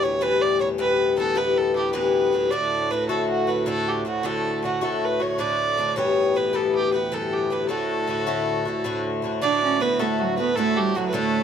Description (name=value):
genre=celtic folk, Celtic slip jig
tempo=104 BPM (dotted quarters)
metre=9/8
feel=straight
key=D major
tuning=A4 = 439 Hz
part: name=warm fiddle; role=melody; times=0.0-11.4 s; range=F#4 to D5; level=-24 LUFS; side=right 2 dB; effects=none
part: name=Irish bouzouki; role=accompaniment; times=0.0-11.4 s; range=G2 to G4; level=-24 LUFS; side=left 6 dB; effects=none
part: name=pedal harmonium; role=drone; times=0.0-11.4 s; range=D2 to A2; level=-31 LUFS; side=right 4 dB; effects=none
part: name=rich cello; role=second line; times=9.4-11.4 s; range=F#3 to D4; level=-24 LUFS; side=right 8 dB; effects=none
room=moderate studio reverb, RT60 0.6 s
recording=none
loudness=-20 LUFS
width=side -8 dB against mid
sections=0.0-9.4 A section; 9.4-11.4 A section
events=none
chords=0.0 Em; 2.5 D; 6.0 Em; 7.7 D